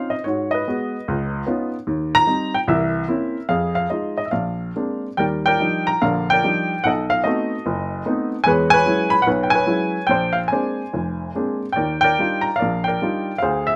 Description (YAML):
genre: solo jazz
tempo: 147 BPM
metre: 4/4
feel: swing 67% on 8ths, rubato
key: unclear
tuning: A4 = 440 Hz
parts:
  - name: dark baby grand piano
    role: solo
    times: 0.0-13.8 s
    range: F1 to B5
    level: -20 LUFS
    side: equal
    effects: none
room: light reverb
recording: none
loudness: -20 LUFS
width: mono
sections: 0.0-5.2 A section; 5.2-13.8 B section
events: none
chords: 0.3 Abm7; 1.1 Db9; 1.9 Eb6; 2.7 C7b9; 3.5 Fm7; 4.3 Bb9; 5.2 Ebmaj9; 6.9 B7b9; 8.5 E69; 10.1 Bb9; 11.8 Ebmaj9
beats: | 0.26 0.66 1.06 1.46 | 1.87 2.27 2.67 3.07 | 3.48 3.90 4.32 4.76 | 5.20 5.62 6.04 6.45 | 6.86 7.26 7.67 8.07 | 8.47 8.87 9.27 9.68 | 10.09 10.51 10.93 11.35 | 11.77 12.19 12.60 13.02 | 13.42